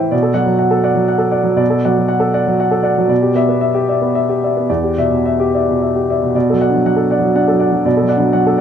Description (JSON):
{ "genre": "neoclassical minimalist piano", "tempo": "106-124 BPM", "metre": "3/4", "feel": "rubato", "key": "unclear", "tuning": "A4 = 439 Hz", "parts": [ { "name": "warm baby grand piano", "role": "solo", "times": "0.0-8.6 s", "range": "E2 to G5", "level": "-12 LUFS", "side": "equal", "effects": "none" } ], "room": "small room ambience", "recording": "rough home demo mix", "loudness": "-12 LUFS", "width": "side -8 dB against mid", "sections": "0.0-6.3 A section; 6.3-8.6 A section", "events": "none", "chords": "0.1 Bm7; 3.1 Em7/B; 4.7 Em7; 6.3 Bm7" }